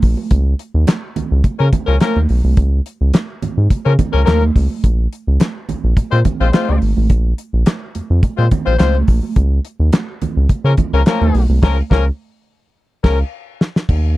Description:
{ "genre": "funk", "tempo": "106 BPM", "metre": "4/4", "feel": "straight", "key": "unclear", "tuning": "A4 = 437 Hz", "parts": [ { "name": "round analog bass", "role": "bass", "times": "0.0-14.2 s", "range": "Ab1 to Db3", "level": "-14 LUFS", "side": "equal", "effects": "none" }, { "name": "damped 70s drum kit", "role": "drums", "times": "0.0-14.0 s", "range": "crash cymbal, handclaps, hi-hat, kick drum, snare drum", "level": "-14 LUFS", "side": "equal", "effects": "none" }, { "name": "congas", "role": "percussion", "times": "0.2-14.0 s", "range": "none", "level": "-23 LUFS", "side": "right 6 dB", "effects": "none" }, { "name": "warm horn section", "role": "second line", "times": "1.6-13.2 s", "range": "F3 to C5", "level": "-18 LUFS", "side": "left 7 dB", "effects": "none" } ], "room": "little or no reverb", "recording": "dry, close 1970s-style studio recording", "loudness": "-13 LUFS", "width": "side -18 dB against mid", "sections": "0.0-13.9 A section", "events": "band accent 11.6-13.9; drum fill 13.3-13.9", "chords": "0.3 N.C.; 4.8 Bbm; 9.4 Db6" }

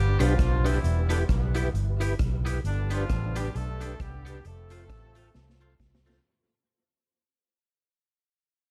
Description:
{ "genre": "ska", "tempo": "133 BPM", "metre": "4/4", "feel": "swing 57% on 8ths", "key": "unclear", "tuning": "A4 = 440 Hz", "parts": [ { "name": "warm horn section", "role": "melody", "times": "0.0-5.8 s", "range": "D3 to A4", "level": "-38 LUFS", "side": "equal", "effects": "tape echo" }, { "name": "vintage muted fingered electric bass", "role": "bass", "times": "0.0-6.2 s", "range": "E1 to C2", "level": "-29 LUFS", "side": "equal", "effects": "none" }, { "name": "twangy electric guitar", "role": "accompaniment", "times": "0.2-6.2 s", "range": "A3 to G4", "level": "-39 LUFS", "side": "equal", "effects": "none" }, { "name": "mellow tonewheel organ", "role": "stabs", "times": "0.2-6.2 s", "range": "D4 to C5", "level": "-37 LUFS", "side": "equal", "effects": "chorus vibrato, slow rotary speaker, tape echo" }, { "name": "street-band drum kit", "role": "drums", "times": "0.2-6.2 s", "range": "hi-hat, kick drum, rim click, snare drum", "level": "-33 LUFS", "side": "equal", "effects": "none" }, { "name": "cabasa", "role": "percussion", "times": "0.2-6.2 s", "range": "none", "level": "-52 LUFS", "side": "equal", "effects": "none" } ], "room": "little or no reverb", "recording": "dark, warm production", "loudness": "-27 LUFS", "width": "mono", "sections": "0.0-6.3 A section", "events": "fade-out 0.0-6.3; drum fill 5.4-6.3", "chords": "0.0 G; 0.8 Em; 2.6 G; 4.5 F" }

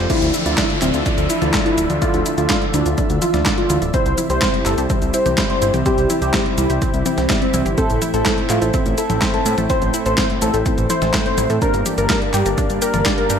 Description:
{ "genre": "italo disco", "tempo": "125 BPM", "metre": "4/4", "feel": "straight", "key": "D minor", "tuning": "A4 = 439 Hz", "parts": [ { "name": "lush unison pad", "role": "sustained chords", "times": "0.0-13.4 s", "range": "D3 to E5", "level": "-25 LUFS", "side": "equal", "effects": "chorus, shimmer reverb" }, { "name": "wide unison pluck", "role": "arpeggios", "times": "0.0-13.3 s", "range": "C4 to Bb4", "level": "-28 LUFS", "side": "right 5 dB", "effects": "cassette tape, digital delay, shimmer reverb" }, { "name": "tine electric piano", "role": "stabs", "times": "0.0-13.4 s", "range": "G2 to D5", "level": "-25 LUFS", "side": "left 3 dB", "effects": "fast stereo tremolo, digital delay, shimmer reverb" }, { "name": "fat analog bass", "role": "bass", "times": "0.0-13.4 s", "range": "D1 to A2", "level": "-22 LUFS", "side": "equal", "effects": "tube saturation" }, { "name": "riser, noise sweep and downlifter", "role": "sound effects", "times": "0.0-3.9 s", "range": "none", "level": "-28 LUFS", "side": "equal", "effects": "none" }, { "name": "wide unison lead", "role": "melody", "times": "0.1-13.4 s", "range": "C4 to C5", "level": "-21 LUFS", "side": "equal", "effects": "cassette tape, digital delay, shimmer reverb" }, { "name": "clean 12-bit digital drum machine", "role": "drums", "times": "0.1-13.4 s", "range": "cabasa, crash cymbal, handclaps, hi-hat, snare drum, toms", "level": "-22 LUFS", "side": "left 1 dB", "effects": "overdrive, small room ambience, gated reverb" }, { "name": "electronic kick drum", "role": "drums", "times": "0.1-13.2 s", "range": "none", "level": "-22 LUFS", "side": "equal", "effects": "small room ambience" } ], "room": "light reverb, digital ambience", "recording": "none", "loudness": "-15 LUFS", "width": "side -7 dB against mid", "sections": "0.1-13.4 A section", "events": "none", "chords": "0.1 Dmadd9; 3.9 C; 7.8 Am; 11.6 Gm" }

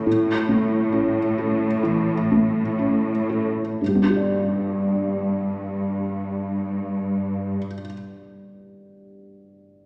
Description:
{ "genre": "cinematic", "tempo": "58-71 BPM", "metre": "4/4", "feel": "rubato", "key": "G major", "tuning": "A4 = 441 Hz", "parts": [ { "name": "felt-muted upright piano", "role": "accompaniment", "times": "0.0-9.9 s", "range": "G2 to D5", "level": "-25 LUFS", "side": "equal", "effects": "none" }, { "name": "rich studio cello section", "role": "bass", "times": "0.0-7.6 s", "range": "G2 to A2", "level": "-27 LUFS", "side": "equal", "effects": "none" } ], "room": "wet scoring stage reverb, RT60 1.9 s", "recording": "none", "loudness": "-23 LUFS", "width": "mono", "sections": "0.0-3.8 A section; 3.8-7.9 B section", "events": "slowing down 0.0-3.8", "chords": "0.0 A; 3.8 G" }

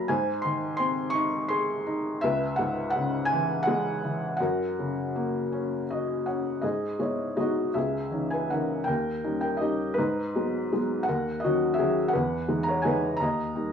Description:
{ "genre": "classical, lyrical solo piano", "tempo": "55 BPM (dotted quarters)", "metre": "6/8", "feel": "rubato", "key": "G# minor from 6.6 s", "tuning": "A4 = 440 Hz", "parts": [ { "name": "felt-muted upright piano", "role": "solo", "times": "0.0-13.7 s", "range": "C#2 to C#6", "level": "-25 LUFS", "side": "left 1 dB", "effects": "none" } ], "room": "light reverb", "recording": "studio reverb", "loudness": "-25 LUFS", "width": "side -7 dB against mid", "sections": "0.0-6.6 A section; 6.6-13.7 B section", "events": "felt piano fill 5.5-6.6", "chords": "0.1 G#; 2.2 C#m7; 4.4 F#; 6.6 G#m; 7.8 C#madd9; 8.9 D#7; 10.0 G#m7; 11.1 D#m7; 12.1 Emaj7; 13.2 D#" }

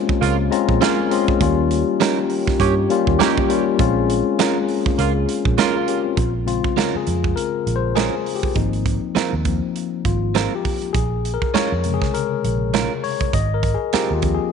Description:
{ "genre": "lush 1970s-style soul", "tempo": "101 BPM", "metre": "4/4", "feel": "swing 58% on 16ths", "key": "Bb dorian", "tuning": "A4 = 440 Hz", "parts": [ { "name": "tine electric piano", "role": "accompaniment", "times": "0.0-14.5 s", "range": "C3 to Bb5", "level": "-21 LUFS", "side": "left 10 dB", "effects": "medium stereo tremolo" }, { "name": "dark French horn section", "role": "sustained chords", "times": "0.0-6.2 s", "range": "Db3 to Ab4", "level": "-27 LUFS", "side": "right 2 dB", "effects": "none" }, { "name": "modern studio drum kit", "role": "drums", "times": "0.1-14.4 s", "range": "hi-hat, kick drum, snare drum", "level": "-23 LUFS", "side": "right 5 dB", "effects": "none" }, { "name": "warm horn section", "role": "stabs", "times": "0.2-6.0 s", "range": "Db3 to G4", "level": "-24 LUFS", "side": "right 12 dB", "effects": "none" }, { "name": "vintage muted fingered electric bass", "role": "bass", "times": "0.2-14.4 s", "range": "Ab1 to G2", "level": "-22 LUFS", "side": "right 2 dB", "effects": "none" }, { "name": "direct-recorded clean electric guitar", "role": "riff", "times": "0.8-14.1 s", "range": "G3 to Bb4", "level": "-24 LUFS", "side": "right 12 dB", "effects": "none" } ], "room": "moderate plate reverb, RT60 2.3 s", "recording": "1960s-style stereo with parts hard left and right, nothing above 10.8 kHz", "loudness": "-17 LUFS", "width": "side -6 dB against mid", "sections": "0.0-6.2 A section; 6.2-14.5 B section", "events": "tine electric piano fill 0.2-1.4; tine electric piano solo 6.2-14.5", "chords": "0.0 Bbm7; 1.4 Eb7; 3.8 Bbm7; 8.6 Ab69; 10.9 Bbm7; 13.3 Ab69" }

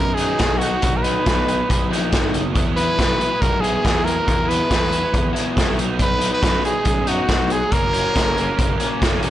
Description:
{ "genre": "indie rock", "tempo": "139 BPM", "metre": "4/4", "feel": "straight", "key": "B major", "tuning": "A4 = 440 Hz", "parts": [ { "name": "brilliant trumpet", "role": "melody", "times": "0.0-9.0 s", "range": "F#4 to B4", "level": "-21 LUFS", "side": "right 1 dB", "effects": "slapback echo" }, { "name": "biting overdriven guitar", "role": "riff", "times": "0.0-9.3 s", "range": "F#3 to E4", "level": "-27 LUFS", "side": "right 8 dB", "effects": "analog chorus, slapback echo" }, { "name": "fuzz picked electric bass", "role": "bass", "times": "0.0-9.3 s", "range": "E1 to F#2", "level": "-25 LUFS", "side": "equal", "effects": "overdrive" }, { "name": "overdriven electric guitar", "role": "riff", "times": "0.2-9.3 s", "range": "B2 to E4", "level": "-26 LUFS", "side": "left 6 dB", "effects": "none" }, { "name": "raw garage drum kit", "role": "drums", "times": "0.2-9.3 s", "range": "hi-hat, kick drum, snare drum", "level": "-20 LUFS", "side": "equal", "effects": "none" } ], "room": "little or no reverb", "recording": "blown-out, overdriven recording, overdrive, nothing above 10.9 kHz", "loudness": "-16 LUFS", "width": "side -13 dB against mid", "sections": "0.0-9.3 A section", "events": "none", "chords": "0.0 B; 2.5 Esus2; 5.8 B; 7.7 F#" }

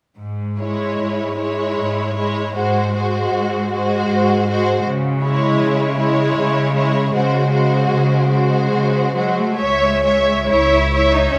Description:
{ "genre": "classical, slow romantic movement for string orchestra", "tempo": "63-81 BPM", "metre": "3/4", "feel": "rubato", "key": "C# minor", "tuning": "A4 = 439 Hz", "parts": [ { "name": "rich studio cello section", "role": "bass", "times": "0.2-11.4 s", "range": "G#2 to E4", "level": "-22 LUFS", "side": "equal", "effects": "none" }, { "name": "warm studio violin section", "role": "melody", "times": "0.6-11.4 s", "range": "B#4 to E5", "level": "-26 LUFS", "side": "equal", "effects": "none" }, { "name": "warm studio violin section", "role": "second line", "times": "0.6-11.4 s", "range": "E4 to C#5", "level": "-24 LUFS", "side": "equal", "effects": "none" }, { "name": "warm studio viola section", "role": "accompaniment", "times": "0.6-11.4 s", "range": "G#3 to C#5", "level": "-22 LUFS", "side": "equal", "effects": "none" }, { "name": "rich studio double bass section", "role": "bass", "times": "9.6-11.4 s", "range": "C#2", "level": "-24 LUFS", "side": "equal", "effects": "none" } ], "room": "wet recital hall reverb, RT60 1.6 s", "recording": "none", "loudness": "-17 LUFS", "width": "mono", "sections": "0.2-9.6 A section; 9.6-11.4 B section", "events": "none", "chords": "0.2 C#m/G#; 4.8 C#m; 7.1 G#7/C#; 9.6 C#m" }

